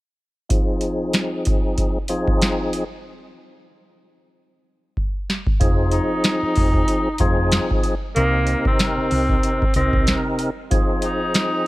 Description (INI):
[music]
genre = hip hop, boom-bap hip-hop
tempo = 94 BPM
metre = 4/4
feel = swing 55% on 16ths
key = F minor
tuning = A4 = 442 Hz
[part]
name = percussive tonewheel organ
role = accompaniment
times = 0.5-11.7 s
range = C3 to Bb4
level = -23 LUFS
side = left 1 dB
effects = overdrive, chorus vibrato, slow rotary speaker, cassette tape, high-pass filter, low-pass filter
[part]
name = booming analog drum machine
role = drums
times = 0.5-11.5 s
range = hi-hat, kick drum, snare drum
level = -20 LUFS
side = equal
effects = none
[part]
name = hollow-body short-scale fingered electric bass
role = bass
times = 5.6-10.1 s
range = F1 to C2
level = -21 LUFS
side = equal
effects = none
[part]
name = breathy tenor saxophone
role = melody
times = 5.9-11.7 s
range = Bb3 to Eb4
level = -23 LUFS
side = equal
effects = high-pass filter, low-pass filter, slapback echo
[sound]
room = digital ambience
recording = none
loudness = -18 LUFS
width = side -18 dB against mid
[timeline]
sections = 0.5-5.6 A section; 5.6-11.7 B section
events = filter sweep on tonewheel organ 0.5-5.6; break 3.1-5.6; drum fill 5.0-5.6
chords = 0.5 Fm7; 3.1 N.C.; 5.6 Fm7; 8.2 Cm7; 10.7 Fm7